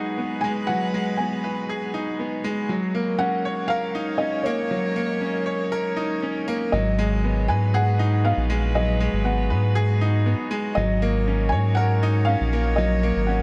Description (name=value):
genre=piano and strings electronica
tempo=119 BPM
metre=4/4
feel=straight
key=G# dorian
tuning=A4 = 440 Hz
part: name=felt-muted upright piano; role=melody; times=0.0-13.4 s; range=C#5 to G#5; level=-30 LUFS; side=equal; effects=tape echo
part: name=warm string quartet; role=sustained chords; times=0.0-13.4 s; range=G#3 to C#5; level=-35 LUFS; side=equal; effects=none
part: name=bright grand piano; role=riff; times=0.0-13.4 s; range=F#3 to C#5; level=-27 LUFS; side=equal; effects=tape echo
part: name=round analog bass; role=bass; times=6.7-13.4 s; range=G#1 to G#2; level=-24 LUFS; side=equal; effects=none
room=light reverb, studio reverb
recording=none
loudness=-23 LUFS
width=mono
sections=0.0-6.7 A section; 6.7-13.4 B section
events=build-up 0.0-6.7; drop 6.7-13.4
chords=0.0 G#m7; 2.7 D#m7; 6.7 G#m7; 10.8 D#m7/G#